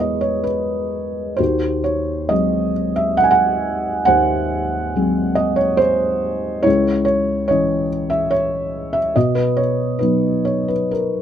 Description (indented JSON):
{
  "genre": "classical, lyrical solo piano",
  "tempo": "62-73 BPM",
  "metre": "3/4",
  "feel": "rubato",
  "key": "unclear",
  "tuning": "A4 = 440 Hz",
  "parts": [
    { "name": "felt-muted upright piano", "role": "solo", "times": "0.0-11.2 s", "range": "C#2 to G#5", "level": "-16 LUFS", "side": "equal", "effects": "none" }
  ],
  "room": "light reverb",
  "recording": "close, detailed microphones",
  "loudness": "-16 LUFS",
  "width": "side -9 dB against mid",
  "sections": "0.0-11.2 A section",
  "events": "none",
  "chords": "0.0 E; 1.4 G#7/D#; 6.7 C#madd9; 9.2 B"
}